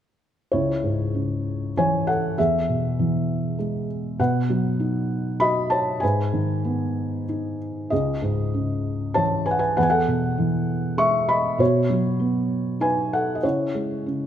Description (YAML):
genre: classical, lyrical solo piano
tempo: 97 BPM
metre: 3/4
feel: rubato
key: C# minor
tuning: A4 = 441 Hz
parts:
  - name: felt-muted upright piano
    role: solo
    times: 0.5-14.3 s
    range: C#2 to C#6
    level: -20 LUFS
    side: equal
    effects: none
room: light reverb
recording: none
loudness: -21 LUFS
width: side -10 dB against mid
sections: 0.5-14.3 A section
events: none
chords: 0.5 C#m; 2.4 E; 4.2 Badd9; 6.0 G#m; 7.9 C#madd9; 9.8 Eadd9; 11.6 Badd9; 13.4 C#m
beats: | 0.52 1.15 1.77 | 2.38 2.99 3.59 | 4.19 4.80 5.41 | 6.03 6.65 7.28 | 7.92 8.54 9.17 | 9.78 10.39 10.99 | 11.60 12.21 12.82 | 13.44 14.07